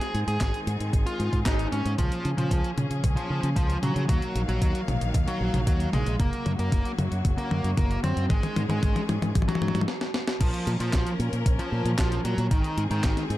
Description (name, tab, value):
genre	italo disco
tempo	114 BPM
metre	4/4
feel	straight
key	unclear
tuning	A4 = 442 Hz
part	dark smooth lead guitar	melody	0.0-13.2 s	Eb3 to C5	-31 LUFS	equal	overdrive, digital delay
part	bright studio string section	sustained chords	0.0-13.4 s	Db3 to F5	-34 LUFS	left 1 dB	low-pass filter
part	clean 12-bit digital drum machine	drums	0.0-13.4 s	crash cymbal, handclaps, hi-hat, snare drum, toms	-31 LUFS	left 2 dB	none
part	fingered electric bass with an envelope filter	bass	0.1-13.4 s	Gb1 to Db3	-28 LUFS	equal	none
part	electronic kick drum	drums	0.4-13.1 s	none	-25 LUFS	equal	none
room	digital ambience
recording	dark, warm production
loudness	-23 LUFS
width	side -16 dB against mid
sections	0.0-2.0 A section; 2.0-10.4 B section; 10.4-13.4 C section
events	band accent 1.5; drum fill 2.0-9.9, 9.9-10.4; stop 9.9-10.4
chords	0.0 Ab; 2.0 Db6; 4.1 Ebmadd9; 6.2 Gb; 8.3 Absus4; 10.4 Bbm; 12.5 Ab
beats	0.41 0.93 1.46 | 1.99 2.51 3.04 3.56 | 4.09 4.62 5.14 5.67 | 6.20 6.72 7.25 7.78 | 8.30 8.83 9.35 9.88 | 10.41 10.93 11.46 11.98 | 12.51 13.04